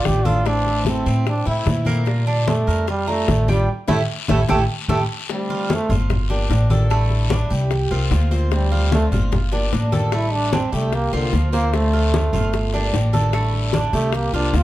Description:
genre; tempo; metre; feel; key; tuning
latin, Cuban son and guajira; 149 BPM; 4/4; straight; unclear; A4 = 440 Hz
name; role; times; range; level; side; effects
bright trombone; melody; 0.0-5.9, 8.6-14.6 s; D3 to G4; -23 LUFS; right 2 dB; none
picked acoustic archtop guitar; accompaniment; 0.0-14.6 s; D3 to G4; -28 LUFS; left 2 dB; none
Cuban tres; arpeggios; 0.0-14.6 s; A3 to Bb5; -27 LUFS; right 3 dB; slapback echo
upright bass; bass; 0.1-14.6 s; G1 to Bb2; -20 LUFS; equal; none
bongos; percussion; 0.1-14.6 s; none; -28 LUFS; left 6 dB; none
congas; percussion; 0.1-14.6 s; none; -25 LUFS; left 1 dB; none
guiro; percussion; 0.1-14.6 s; none; -34 LUFS; left 7 dB; none
room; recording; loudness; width
light reverb; dark, warm production; -17 LUFS; side -15 dB against mid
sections
0.0-5.3 A section; 5.3-14.6 B section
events
band accent 3.7-5.3; trombone solo 5.3-14.6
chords
0.5 Am; 2.1 Bb6; 3.7 A7; 5.3 Dm7; 6.1 Gm7; 6.9 A7sus4; 7.7 C7sus4; 8.5 Dm7; 9.3 Gm7; 10.1 A7sus4; 10.9 C7sus4; 11.7 Dm7; 12.5 Gm7; 13.3 A7sus4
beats
0.06 | 0.46 0.86 1.26 1.67 | 2.07 2.48 2.88 3.28 | 3.69 4.09 4.49 4.89 | 5.30 5.70 6.10 6.51 | 6.91 7.31 7.71 8.12 | 8.52 8.92 9.32 9.72 | 10.13 10.53 10.93 11.33 | 11.73 12.13 12.54 12.94 | 13.34 13.74 14.14 14.54

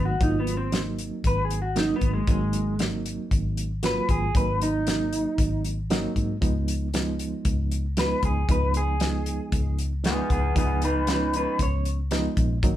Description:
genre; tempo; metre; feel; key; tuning
straight-eighth soul blues; 116 BPM; 4/4; swing 54% on 16ths; unclear; A4 = 440 Hz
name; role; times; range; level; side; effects
electric guitar through a small old amp; melody; 0.0-11.9 s; Ab3 to Db5; -27 LUFS; equal; slapback echo
barky reed electric piano; accompaniment; 0.0-12.8 s; F3 to F4; -30 LUFS; right 4 dB; overdrive, medium tremolo
vintage muted fingered electric bass; bass; 0.0-12.8 s; Ab1 to Ab2; -27 LUFS; left 1 dB; none
warm soul drum kit; drums; 0.2-12.8 s; hi-hat, kick drum, snare drum; -27 LUFS; left 1 dB; none
room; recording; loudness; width
light reverb; band playing live in one room; -22 LUFS; side -12 dB against mid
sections
0.0-12.8 A section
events
clean electric guitar solo 0.0-12.8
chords
0.0 Ab9; 6.4 Db9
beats
| 0.21 0.73 1.25 1.76 | 2.28 2.80 3.31 3.83 | 4.35 4.87 5.39 5.90 | 6.42 6.94 7.46 7.97 | 8.49 9.01 9.53 10.04 | 10.56 11.08 11.60 12.11 | 12.63

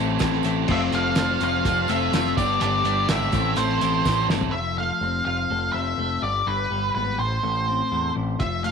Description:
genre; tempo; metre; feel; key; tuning
indie rock; 124 BPM; 4/4; straight; unclear; A4 = 442 Hz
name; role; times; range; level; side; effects
biting overdriven guitar; riff; 0.0-4.5 s; G2 to A4; -27 LUFS; right 15 dB; wide subtle chorus, tape echo
twelve-string electric guitar; riff; 0.0-8.7 s; G2 to F4; -27 LUFS; left 11 dB; none
growling picked electric bass; bass; 0.0-8.7 s; F1 to E2; -28 LUFS; right 1 dB; overdrive
cloth-damped thuddy drum kit; drums; 0.2-4.5, 8.4-8.7 s; crash cymbal, hi-hat, kick drum, snare drum, toms; -26 LUFS; right 1 dB; none
tambourine; percussion; 0.2-4.4 s; none; -44 LUFS; left 17 dB; none
octave-fuzz lead guitar; melody; 0.7-8.7 s; B4 to F5; -24 LUFS; right 1 dB; distortion, tape echo
room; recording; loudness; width
light reverb, small room ambience; 1960s-style stereo with parts hard left and right; -20 LUFS; side -6 dB against mid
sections
0.0-4.5 A section; 4.5-8.7 B section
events
drum fill 4.0-4.5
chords
0.0 Am; 0.7 F; 2.4 G; 3.3 Am; 4.5 F; 6.2 G; 7.2 Am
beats
0.20 | 0.68 1.16 1.64 2.12 | 2.60 3.09 3.57 4.05 | 4.53 5.01 5.50 5.98 | 6.47 6.95 7.43 7.92 | 8.40

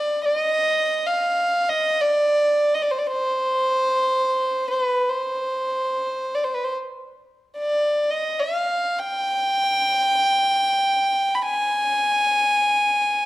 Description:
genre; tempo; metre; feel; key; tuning
Arabic maqam ensemble; free time; none; none; unclear; A4 = 440 Hz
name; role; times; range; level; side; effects
rich violin; solo; 0.0-13.3 s; B4 to B5; -19 LUFS; equal; none
room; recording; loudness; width
wet recital hall reverb, RT60 1.4 s; dark, warm production; -19 LUFS; side -17 dB against mid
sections
0.0-13.3 A section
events
none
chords
none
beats
free time

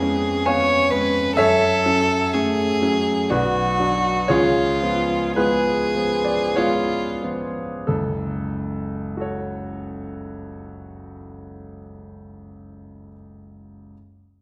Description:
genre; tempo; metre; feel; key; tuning
classical, romantic duo for violin and grand piano; 44-67 BPM; 3/4; rubato; F# minor; A4 = 440 Hz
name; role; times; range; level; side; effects
rich violin; melody; 0.0-7.2 s; E#4 to C#5; -23 LUFS; equal; none
bright grand piano; accompaniment; 0.0-13.9 s; F#1 to C#6; -24 LUFS; equal; none
room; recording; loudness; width
wet recital hall reverb, RT60 1.3 s; none; -21 LUFS; mono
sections
0.0-7.9 A section; 7.9-11.7 B section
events
slowing down 0.0-7.9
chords
0.0 C#7/E#; 1.4 F#m; 3.3 Bm; 4.3 C#7; 7.9 F#m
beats
0.46 | 1.37 2.33 3.30 | 4.29 5.37 6.56 | 7.87 9.16 10.44

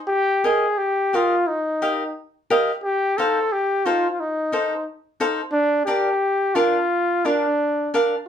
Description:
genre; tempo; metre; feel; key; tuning
mexican folk, mariachi; 88 BPM; 4/4; rubato; unclear; A4 = 440 Hz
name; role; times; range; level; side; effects
warm trumpet; melody; 0.1-7.9 s; D4 to A4; -20 LUFS; left 1 dB; none
cavaquinho; accompaniment; 0.4-8.1 s; D4 to F5; -21 LUFS; equal; none
room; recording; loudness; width
wet studio ambience, RT60 0.5 s; heard from further back in the room; -19 LUFS; side -8 dB against mid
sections
0.0-8.3 A section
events
none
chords
0.1 Ebadd9; 2.8 F7; 5.5 Bb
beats
| 0.09 0.79 1.48 2.16 | 2.84 3.52 4.19 4.87 | 5.54 6.22 6.90 7.59

